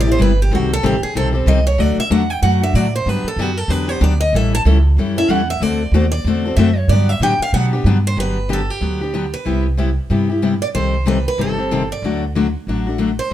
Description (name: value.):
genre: acoustic string swing (jazz manouche).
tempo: 188 BPM.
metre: 4/4.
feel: swing 60% on 8ths.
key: G major.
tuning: A4 = 442 Hz.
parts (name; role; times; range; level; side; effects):
picked steel-string acoustic guitar; melody; 0.0-13.3 s; F#4 to A5; -21 LUFS; right 2 dB; none.
picked steel-string acoustic guitar; accompaniment; 0.0-13.3 s; C3 to A4; -19 LUFS; left 4 dB; none.
upright bass; bass; 0.0-13.3 s; G1 to B2; -17 LUFS; right 1 dB; none.
room: light reverb.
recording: none.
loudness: -14 LUFS.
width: side -12 dB against mid.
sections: 0.0-8.2 A section; 8.2-13.3 B section.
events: steel-string acoustic guitar solo 0.0-8.2.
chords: 0.0 Cmaj7; 0.5 Cm6; 1.8 D; 3.1 Gmaj7; 4.3 A7; 5.6 D7; 6.9 Gmaj7; 9.5 Cmaj7; 10.7 Cm6; 12.0 D.